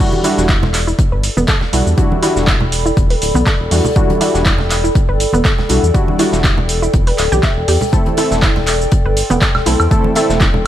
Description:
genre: deep house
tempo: 121 BPM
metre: 4/4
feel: swing 54% on 16ths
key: E minor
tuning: A4 = 440 Hz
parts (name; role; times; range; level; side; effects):
- warm analog keys; stabs; 0.0-10.4 s; G3 to A4; -18 LUFS; equal; chorus, sidechain pumping, ping-pong delay
- punchy analog drum machine; drums; 0.0-10.5 s; crash cymbal, handclaps, hi-hat, shaker, woodblock; -20 LUFS; right 1 dB; none
- tight funk drum kit; drums; 0.0-10.5 s; hi-hat, snare drum; -30 LUFS; left 2 dB; none
- warbly tape-like pad; texture; 0.0-10.7 s; A4 to C6; -20 LUFS; left 1 dB; chorus, built-in reverb, phaser, sidechain pumping
- congas; percussion; 0.1-10.6 s; none; -23 LUFS; right 2 dB; sidechain pumping on perc
- analog pluck; arpeggios; 0.2-10.5 s; B3 to E5; -22 LUFS; right 2 dB; chorus, cassette tape, sidechain pumping, ping-pong delay
- round analog bass; bass; 0.4-10.7 s; D1 to E2; -17 LUFS; equal; none
- electronic kick drum; drums; 0.5-10.5 s; none; -14 LUFS; equal; none
room: light reverb, small room reverb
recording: vinyl crackle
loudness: -11 LUFS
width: side -12 dB against mid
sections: 0.0-10.7 A section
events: none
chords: 0.0 Em9; 7.9 Am

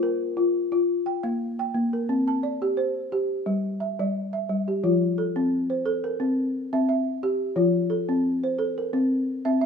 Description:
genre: west african traditional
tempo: 88 BPM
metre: 4/4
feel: swing 54% on 16ths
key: F major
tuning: A4 = 440 Hz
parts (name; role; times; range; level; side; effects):
- balafon; solo; 0.0-9.7 s; F3 to A5; -22 LUFS; left 1 dB; none
room: moderate recital hall reverb, RT60 1.6 s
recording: minimal, uncompressed stereo recording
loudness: -23 LUFS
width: side -6 dB against mid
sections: 0.0-4.8 A section; 4.8-9.7 B section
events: none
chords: 0.0 Bb5; 2.1 C5; 3.5 G5; 4.8 F; 6.2 C; 7.6 F; 8.9 C

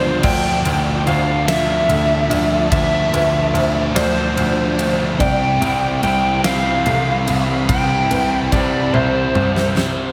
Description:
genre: post-rock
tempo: 48 BPM (dotted quarters)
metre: 6/8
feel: straight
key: unclear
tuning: A4 = 442 Hz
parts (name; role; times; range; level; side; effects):
- overdriven slide guitar; melody; 0.0-10.1 s; C5 to G5; -22 LUFS; equal; tape echo
- dark symphonic string section; sustained chords; 0.0-10.1 s; E3 to B5; -32 LUFS; equal; none
- felt-muted upright piano; arpeggios; 0.0-10.1 s; A4 to E5; -31 LUFS; equal; lush chorus, tape echo
- crunchy overdriven guitar; riff; 0.0-10.1 s; G2 to E4; -26 LUFS; equal; phaser
- fuzz guitar; riff; 0.0-10.1 s; C3 to E4; -24 LUFS; equal; distortion
- warm grand piano; bass; 0.0-10.1 s; C2 to D2; -24 LUFS; equal; none
- huge arena drum kit; drums; 0.2-10.0 s; crash cymbal, kick drum, ride cymbal, snare drum, toms; -26 LUFS; equal; none
room: wet plate reverb, RT60 1.7 s, small room reverb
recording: dreamy mix soaked in reverb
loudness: -17 LUFS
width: mono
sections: 0.0-10.1 A section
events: drum fill 8.9-10.1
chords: 0.2 Dm7; 5.2 Cmaj7

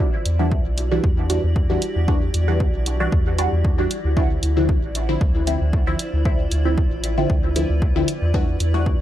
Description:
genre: dub techno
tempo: 115 BPM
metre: 4/4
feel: straight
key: unclear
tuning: A4 = 439 Hz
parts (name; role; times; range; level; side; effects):
- granular cloud pad; sustained chords; 0.0-9.0 s; E4 to D5; -30 LUFS; equal; built-in reverb, sidechain pumping
- filtered dub chord stab; stabs; 0.0-8.9 s; D3 to F#4; -24 LUFS; equal; phaser, sidechain pumping, dub echo
- soft dub sub bass; bass; 0.3-9.0 s; A1 to E2; -21 LUFS; equal; sidechain pumping
- electronic hi-hat; drums; 0.3-8.7 s; none; -28 LUFS; right 1 dB; none
- electronic kick drum; drums; 0.5-9.0 s; none; -21 LUFS; equal; none
room: digital ambience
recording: dry, gritty hardware recording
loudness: -18 LUFS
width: side -12 dB against mid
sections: 0.0-9.0 A section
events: none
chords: 0.0 Em9; 4.2 Dm9; 8.3 Em9

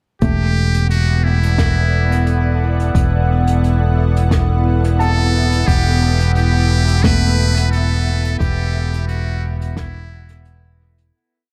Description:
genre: ambient dub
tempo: 88 BPM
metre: 4/4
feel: swing 55% on 16ths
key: E minor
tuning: A4 = 441 Hz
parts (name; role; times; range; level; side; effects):
- trumpet with metal mute; melody; 0.2-10.4 s; E4 to B4; -25 LUFS; equal; dub echo
- soft additive organ-like pad; sustained chords; 0.7-11.1 s; B3 to F#5; -26 LUFS; equal; ensemble chorus, built-in reverb
- felt-muted upright piano; arpeggios; 0.2-11.1 s; A3 to A5; -29 LUFS; equal; dub echo
- fingered electric bass; bass; 0.2-11.1 s; E1; -17 LUFS; equal; tube saturation
- electronic kick drum; drums; 0.2-9.9 s; none; -21 LUFS; equal; none
- jazz brush drum kit; drums; 0.2-11.1 s; hi-hat, snare drum; -34 LUFS; equal; dub echo
- drifting glass-harmonics texture; texture; 1.1-11.1 s; B3 to B4; -31 LUFS; equal; chorus, built-in reverb
room: light reverb, small room ambience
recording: none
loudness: -16 LUFS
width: mono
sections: 0.2-11.1 groove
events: fade-out 7.5-11.1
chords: 0.2 Em7

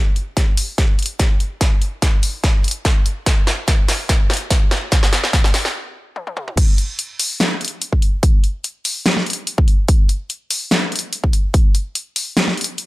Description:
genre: dubstep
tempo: 145 BPM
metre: 4/4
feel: swing 53% on 16ths, half-time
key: none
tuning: none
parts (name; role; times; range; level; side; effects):
- big-room dance drum kit; drums; 0.2-12.9 s; crash cymbal, hi-hat, snare drum, toms; -19 LUFS; equal; high-pass filter on hats, high-pass filter on snare, high-pass filter on toms, high-pass filter on cymbals
- electronic kick drum; drums; 0.4-11.6 s; none; -15 LUFS; equal; none
room: digital ambience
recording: none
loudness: -15 LUFS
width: side -19 dB against mid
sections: 0.0-6.6 A section; 6.6-12.9 B section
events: build-up 0.0-6.6; drum fill 0.0-5.7, 6.2-6.6; stop 5.7-6.6; drop 6.6-12.9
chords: none

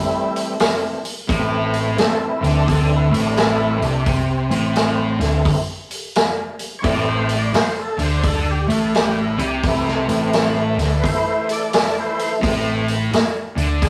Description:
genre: blues rock power trio and southern rock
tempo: 86 BPM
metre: 4/4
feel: swing 64% on 8ths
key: A minor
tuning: A4 = 440 Hz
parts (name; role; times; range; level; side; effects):
- overdriven tonewheel organ; sustained chords; 0.0-13.9 s; E3 to D5; -24 LUFS; equal; slow rotary speaker, chorus vibrato
- vintage drum kit; drums; 0.4-13.9 s; hi-hat, kick drum, snare drum; -24 LUFS; equal; none
- thick fuzz guitar; riff; 1.3-13.9 s; A2 to D3; -22 LUFS; equal; distortion
- hollow-body short-scale picked electric bass; bass; 1.3-13.9 s; A1 to D2; -27 LUFS; equal; none
room: moderate stone room reverb, RT60 1.0 s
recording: rough rehearsal-room recording, warm saturation, small room ambience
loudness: -19 LUFS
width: mono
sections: 0.0-13.9 A section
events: tonewheel organ solo 0.0-13.9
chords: 0.0 Am

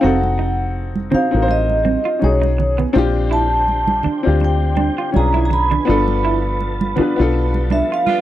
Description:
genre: R&B, neo-soul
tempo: 82 BPM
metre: 4/4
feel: swing 56% on 16ths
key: unclear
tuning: A4 = 442 Hz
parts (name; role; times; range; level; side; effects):
- vibraphone with soft mallets; melody; 0.0-8.2 s; C#5 to B5; -20 LUFS; right 1 dB; none
- electric guitar through a small old amp; second line; 0.0-8.0 s; B3 to F4; -22 LUFS; right 6 dB; none
- warm upright piano; accompaniment; 0.0-8.2 s; B3 to C5; -20 LUFS; left 5 dB; none
- deep dub fingered electric bass; bass; 0.0-7.8 s; F1 to D2; -19 LUFS; equal; none
- congas; percussion; 0.0-8.2 s; none; -24 LUFS; right 5 dB; none
- tonewheel organ; sustained chords; 2.9-8.2 s; D3 to A4; -29 LUFS; right 2 dB; slow rotary speaker, chorus vibrato
- warm saxophone section; stabs; 8.1-8.2 s; B3 to F4; -19 LUFS; right 7 dB; none
room: small room ambience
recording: dry, close 1970s-style studio recording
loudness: -14 LUFS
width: side -13 dB against mid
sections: 0.0-8.2 A section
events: band accent 5.9-8.2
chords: 0.0 F7b9; 2.2 B69; 2.9 Bb69; 5.1 Bdim7; 5.9 G9

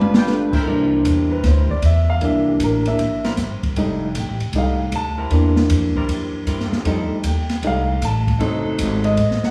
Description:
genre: jazz, big band swing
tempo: 155 BPM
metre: 4/4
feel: swing 66% on 8ths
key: C mixolydian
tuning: A4 = 440 Hz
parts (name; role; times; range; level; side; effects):
- warm saxophone section; melody; 0.0-0.5 s; G3 to B4; -30 LUFS; equal; none
- upright bass; bass; 0.0-9.5 s; F1 to G2; -22 LUFS; equal; none
- open jazz drum kit; drums; 0.0-9.5 s; crash cymbal, hi-hat, kick drum, ride cymbal, snare drum, toms; -26 LUFS; equal; none
- clear trumpet section; stabs; 0.1-0.6 s; E4 to G5; -33 LUFS; equal; none
- warm concert grand piano; accompaniment; 0.3-9.5 s; E3 to A5; -23 LUFS; equal; none
- mellow saxophone section; sustained chords; 0.6-9.5 s; F3 to Bb4; -33 LUFS; equal; none
room: wet recital hall reverb, RT60 1.6 s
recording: heard from further back in the room, small room ambience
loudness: -19 LUFS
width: mono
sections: 0.7-9.5 A section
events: drum fill 0.0; grand piano solo 0.7-9.5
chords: 0.0 G7; 3.8 F7; 5.3 C7; 6.9 F7; 8.4 F#dim7

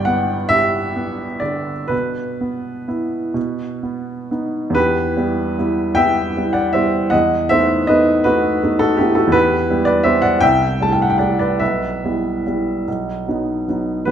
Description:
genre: classical, romantic nocturne for solo piano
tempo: 40-56 BPM (dotted quarters)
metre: 12/8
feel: rubato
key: E minor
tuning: A4 = 440 Hz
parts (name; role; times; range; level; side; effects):
- warm upright piano; solo; 0.0-14.1 s; G1 to A5; -16 LUFS; equal; none
room: wet recital hall reverb, RT60 1.9 s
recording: minimal, uncompressed stereo recording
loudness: -15 LUFS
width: side -9 dB against mid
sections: 0.0-4.8 A section; 4.8-14.1 B section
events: none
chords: 0.0 G; 1.9 E5/B; 3.4 B; 4.8 Em; 7.1 B7/E; 9.3 Em; 10.4 C6; 11.6 Em/B; 12.9 B

